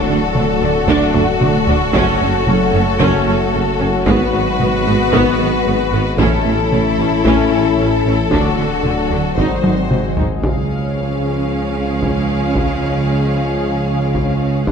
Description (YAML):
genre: cinematic, hybrid orchestral and electronic film score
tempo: 113 BPM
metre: 4/4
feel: straight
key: unclear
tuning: A4 = 440 Hz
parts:
  - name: clear symphonic violin section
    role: melody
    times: 0.0-14.6 s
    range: A4 to E#5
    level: -22 LUFS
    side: left 5 dB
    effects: none
  - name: clear symphonic violin section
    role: second line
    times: 0.0-14.7 s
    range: E4 to A4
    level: -24 LUFS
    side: left 4 dB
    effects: none
  - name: rich symphonic viola section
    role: accompaniment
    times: 0.0-14.7 s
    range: B3 to D#4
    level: -23 LUFS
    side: equal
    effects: none
  - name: dark French horn section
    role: sustained chords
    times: 0.0-14.7 s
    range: G#3 to F#4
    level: -23 LUFS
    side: left 4 dB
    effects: none
  - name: warbly tape-like pad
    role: sustained chords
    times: 0.0-14.7 s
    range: E3 to D#5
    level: -23 LUFS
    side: equal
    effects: chorus, built-in reverb
  - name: swelling detuned saw bass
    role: bass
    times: 0.0-10.4 s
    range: D1 to A1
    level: -24 LUFS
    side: equal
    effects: none
  - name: clear symphonic cello section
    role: bass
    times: 0.1-14.7 s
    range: D2 to D3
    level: -23 LUFS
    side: right 2 dB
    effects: none
  - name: mellow tuba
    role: bass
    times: 0.1-14.7 s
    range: F#1 to D2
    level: -23 LUFS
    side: right 4 dB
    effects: none
  - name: rich symphonic double bass section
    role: bass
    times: 0.1-14.7 s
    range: F#1 to D2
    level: -23 LUFS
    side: right 4 dB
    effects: none
  - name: solo taiko drums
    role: drums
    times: 0.3-14.7 s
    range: none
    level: -21 LUFS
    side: equal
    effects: none
room: wet scoring stage reverb, RT60 1.6 s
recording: none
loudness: -13 LUFS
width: side -6 dB against mid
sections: 0.0-10.4 A section; 10.4-14.7 B section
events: drum fill 1.1-1.9, 9.6-10.4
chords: 0.0 D; 1.9 F#m; 4.1 G#m7; 6.2 A; 8.3 D; 9.4 G#7; 10.4 C#